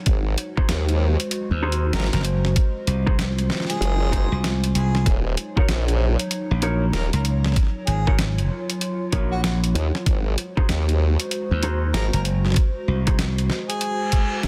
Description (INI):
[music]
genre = glitch hop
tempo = 96 BPM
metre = 4/4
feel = swing 63% on 16ths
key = unclear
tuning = A4 = 439 Hz
[part]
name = warbly tape-like pad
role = sustained chords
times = 0.0-14.5 s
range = Gb3 to Db5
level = -33 LUFS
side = equal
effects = chorus, built-in reverb, sidechain pumping
[part]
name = formant-sweep wobble bass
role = bass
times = 0.1-14.5 s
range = Eb1 to Eb2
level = -23 LUFS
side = equal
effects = chorus, overdrive
[part]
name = boom bap sampler-style drum kit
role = drums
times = 0.1-14.5 s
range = hi-hat, snare drum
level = -29 LUFS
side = equal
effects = small room reverb
[part]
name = electronic kick drum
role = drums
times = 0.1-14.3 s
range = none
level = -22 LUFS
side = equal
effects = small room reverb
[part]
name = mellow electric guitar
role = stabs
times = 0.6-13.2 s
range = Eb4 to Db5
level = -34 LUFS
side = equal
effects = sidechain pumping, dub echo
[part]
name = slap bass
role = bass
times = 1.5-13.5 s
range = Gb1 to Eb2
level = -23 LUFS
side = equal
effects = none
[part]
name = mellow harmonica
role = melody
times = 1.9-14.5 s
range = Gb4 to Bb4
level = -34 LUFS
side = equal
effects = dub echo
[part]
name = reverse cymbal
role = sound effects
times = 14.0-14.5 s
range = none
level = -32 LUFS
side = equal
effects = none
[sound]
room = little or no reverb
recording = dense, heavily limited modern master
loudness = -22 LUFS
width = mono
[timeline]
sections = 0.0-14.5 A section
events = reverse cymbal 14.0-14.5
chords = 0.1 Ab7; 5.1 Ebm7; 10.1 Ab7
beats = | 0.06 0.69 1.31 1.94 | 2.56 3.19 3.81 4.44 | 5.06 5.69 6.31 6.94 | 7.56 8.19 8.81 9.44 | 10.06 10.69 11.31 11.94 | 12.56 13.19 13.81 14.44